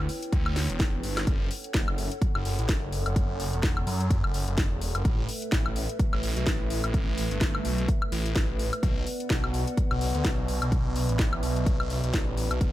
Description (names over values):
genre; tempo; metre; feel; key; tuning
bass house; 127 BPM; 4/4; swing 57% on 16ths; unclear; A4 = 442 Hz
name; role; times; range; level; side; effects
dark analog pad; sustained chords; 0.0-12.7 s; A3 to G5; -35 LUFS; equal; wide subtle chorus, sidechain pumping
phased detuned saw bass; bass; 0.0-12.7 s; E1 to F#2; -29 LUFS; equal; phaser, tube saturation, sidechain pumping
house drum kit; drums; 0.1-12.7 s; hi-hat, snare drum, woodblock; -32 LUFS; left 1 dB; overdrive, studio reverb
electronic kick drum; drums; 0.3-12.7 s; none; -27 LUFS; equal; overdrive, studio reverb
room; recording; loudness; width
little or no reverb; none; -24 LUFS; side -15 dB against mid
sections
0.0-12.7 A section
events
drum fill 0.8-1.3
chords
0.0 Em7; 1.3 F#m; 5.0 Asus2; 8.8 Bm